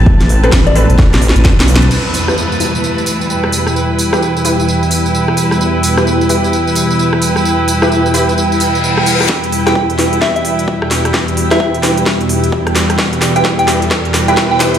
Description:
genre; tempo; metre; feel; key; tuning
bass house; 130 BPM; 4/4; swing 62% on 16ths; E minor; A4 = 441 Hz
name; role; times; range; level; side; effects
wobble bass; bass; 0.0-1.9 s; A1 to B1; -10 LUFS; equal; chorus, tube saturation, sidechain pumping
dark studio string section; texture; 0.0-14.8 s; C4 to A5; -17 LUFS; right 1 dB; sidechain pumping
electronic kick drum; drums; 0.1-1.6, 9.3-14.5 s; none; -13 LUFS; equal; high-pass filter on kick
house drum kit; drums; 0.2-14.8 s; crash cymbal, hi-hat, rim click, snare drum, tambourine; -17 LUFS; equal; high-pass filter on snare, high-pass filter on hats, high-pass filter on cymbals, high-pass filter on perc
orchestra-hit-like synth stab; stabs; 0.4-14.7 s; C4 to B4; -19 LUFS; left 1 dB; built-in reverb, sidechain pumping, ping-pong delay
soft synth bell; melody; 0.7-0.8, 9.7-14.6 s; D5 to G5; -19 LUFS; right 1 dB; chorus, phaser, ping-pong delay
sweeping resonant pad; sustained chords; 1.9-14.8 s; E2 to G3; -16 LUFS; equal; chorus, vintage 12-bit sampler grit, sidechain pumping
downlifter, reverse cymbal and riser; sound effects; 1.9-14.8 s; none; -21 LUFS; equal; none
room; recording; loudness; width
moderate plate reverb, RT60 1.8 s, digital ambience; played on a big sound system in a bare room, large studio reverb; -10 LUFS; side -9 dB against mid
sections
0.0-1.9 A section; 1.9-9.3 B section; 9.3-14.8 C section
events
drum fill 1.0-1.9, 9.3-14.8; filter sweep on synth stab 1.9-9.3, 9.3-14.8; reverse cymbal 8.6-9.3; build-up 9.3-14.8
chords
0.0 Amadd9; 1.9 Em

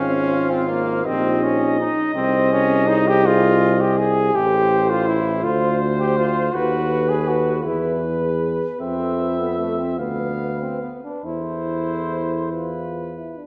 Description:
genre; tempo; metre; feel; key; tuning
classical, hymn-like piece for brass band; 46-56 BPM (dotted quarters); 6/8; rubato; A minor from 4.4 s; A4 = 440 Hz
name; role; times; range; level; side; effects
clear flugelhorn; melody; 0.0-13.4 s; B4 to F5; -29 LUFS; equal; none
warm French horn section; second line; 0.0-13.1 s; Eb4 to C5; -30 LUFS; equal; none
clear euphonium; accompaniment; 0.0-13.5 s; D4 to C5; -32 LUFS; equal; none
clear trombone; accompaniment; 0.0-13.4 s; A3 to G#4; -24 LUFS; equal; none
warm tuba; bass; 0.0-13.4 s; Ab1 to F2; -25 LUFS; equal; none
room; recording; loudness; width
wet recital hall reverb, RT60 1.9 s; none; -20 LUFS; mono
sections
0.0-13.5 A section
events
none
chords
0.0 Fm/Ab; 1.1 Eb/Bb; 2.2 Ab/C; 4.4 Am; 5.4 Dm7; 6.5 B7/D#; 7.7 E; 8.8 Fmaj7; 10.0 Bdim/D; 11.2 Am/E; 12.5 E5

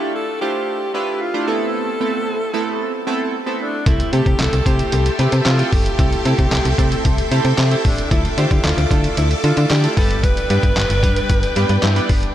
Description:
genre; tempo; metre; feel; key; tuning
dance-pop; 113 BPM; 4/4; straight; C major; A4 = 442 Hz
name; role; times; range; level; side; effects
breathy alto saxophone; melody; 0.0-12.3 s; D4 to B4; -24 LUFS; equal; diffuse ambient delay
chorused retro synth keys; accompaniment; 0.0-12.2 s; G3 to C5; -23 LUFS; right 3 dB; sidechain pumping
string machine, full ensemble; sustained chords; 3.9-12.3 s; A4 to D6; -24 LUFS; equal; ensemble chorus, sidechain pumping
slap-like FM bass; bass; 3.9-12.3 s; G1 to D3; -17 LUFS; equal; sidechain pumping
trip hop sampler-style drum kit; drums; 3.9-12.3 s; handclaps, hi-hat, kick drum, snare drum; -19 LUFS; equal; none
room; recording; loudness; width
light reverb, digital ambience; none; -15 LUFS; side -12 dB against mid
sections
0.0-12.3 A section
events
none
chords
0.0 Dmadd9; 1.5 Amadd9; 3.9 C6; 8.1 Dmadd9; 10.0 G

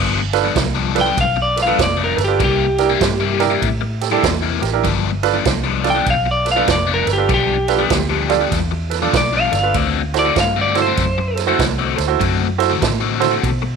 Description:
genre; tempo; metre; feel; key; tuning
electric blues shuffle; 98 BPM; 4/4; swing 64% on 8ths; G mixolydian; A4 = 441 Hz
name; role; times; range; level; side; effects
biting overdriven guitar; riff; 0.0-13.7 s; G2 to F#4; -21 LUFS; left 14 dB; phaser
vintage muted fingered electric bass; bass; 0.0-13.8 s; F1 to B2; -22 LUFS; equal; none
bright concert grand piano; accompaniment; 0.3-13.3 s; D4 to D5; -21 LUFS; right 13 dB; none
swinging big-band drum kit; drums; 0.3-13.6 s; kick drum, ride cymbal, snare drum; -22 LUFS; right 5 dB; none
electric guitar at the edge of break-up; melody; 1.0-11.4 s; G4 to G5; -19 LUFS; left 1 dB; none
room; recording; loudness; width
light reverb, small room ambience; 1960s-style stereo with parts hard left and right; -14 LUFS; side -6 dB against mid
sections
0.0-13.8 A section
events
none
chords
0.0 G7; 2.4 C7; 4.8 G7; 9.7 D7

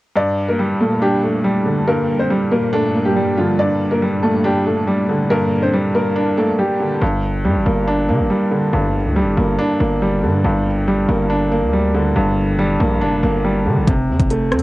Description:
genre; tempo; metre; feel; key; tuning
hip hop, drill; 140 BPM; 4/4; half-time; G minor; A4 = 440 Hz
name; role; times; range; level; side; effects
clear upright piano; melody; 0.2-7.0 s; F3 to D5; -19 LUFS; equal; low-pass filter, cassette tape, tape echo
felt-muted upright piano; accompaniment; 0.2-14.6 s; G2 to D4; -17 LUFS; equal; low-pass filter, cassette tape
ethereal airy pad; sustained chords; 0.8-7.0 s; G2 to D4; -28 LUFS; equal; ensemble chorus, built-in reverb, cassette tape
distorted 808-style bass; bass; 7.0-14.6 s; F1 to D3; -20 LUFS; equal; distortion
drill drum kit; drums; 13.9-14.6 s; hi-hat, kick drum, rim click; -18 LUFS; equal; cassette tape
room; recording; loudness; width
light reverb; home recording on cassette; -15 LUFS; side -18 dB against mid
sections
0.2-7.0 A section; 7.0-14.6 B section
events
none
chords
0.2 Gm; 13.9 F

